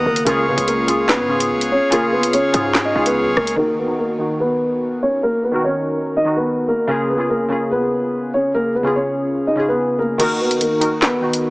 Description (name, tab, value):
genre	hip hop, drill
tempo	145 BPM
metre	4/4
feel	half-time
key	Eb minor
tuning	A4 = 439 Hz
part	dark concert grand piano	melody	0.0-11.5 s	Bb3 to Eb5	-18 LUFS	equal	low-pass filter
part	glassy digital keys	accompaniment	0.0-11.5 s	Db3 to Bb4	-21 LUFS	equal	chorus, low-pass filter
part	pipe organ, trumpet	sustained chords	0.0-3.5 s	Ab4 to Eb6	-24 LUFS	equal	none
part	hard-hitting 808-style bass	bass	0.0-3.6 s	Gb1 to Db3	-27 LUFS	equal	none
part	drill drum kit	drums	0.2-3.6, 10.2-11.4 s	crash cymbal, handclaps, hi-hat, rim click, snare drum	-20 LUFS	equal	vintage 12-bit sampler grit
room	light reverb, digital ambience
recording	heavily compressed radio sound, small speaker sound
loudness	-16 LUFS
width	side -22 dB against mid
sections	0.0-3.6 A section; 3.6-10.2 B section; 10.2-11.5 C section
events	filter sweep 3.6-10.2; kick muted 10.2-11.5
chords	0.3 Db; 3.6 Ebm; 6.9 Db; 10.2 Ebm